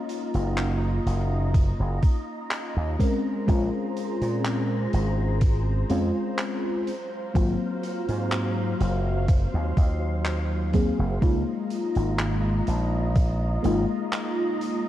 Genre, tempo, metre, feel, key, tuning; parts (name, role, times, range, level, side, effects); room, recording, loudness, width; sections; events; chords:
vaporwave; 62 BPM; 4/4; straight; Db major; A4 = 439 Hz
mellow FM electric piano; accompaniment; 0.0-14.9 s; Gb3 to Bb4; -28 LUFS; left 1 dB; analog chorus, tape echo
soft string machine; sustained chords; 0.0-14.9 s; Gb3 to C6; -34 LUFS; right 1 dB; phaser, ensemble chorus
big rock drum kit; drums; 0.1-14.8 s; handclaps, hi-hat; -36 LUFS; equal
slap bass with an envelope filter; bass; 0.3-13.8 s; Gb1 to Bb2; -25 LUFS; equal; tube saturation
electronic kick drum; drums; 1.5-13.4 s; -21 LUFS; equal; overdrive
small room ambience; dark, warm production, cassette tape; -23 LUFS; side -13 dB against mid
0.0-14.9 A section
0.0 Cbmaj9#11 (rootless); 3.0 Bbm9; 6.9 Ab13; 11.2 Db69 (rootless)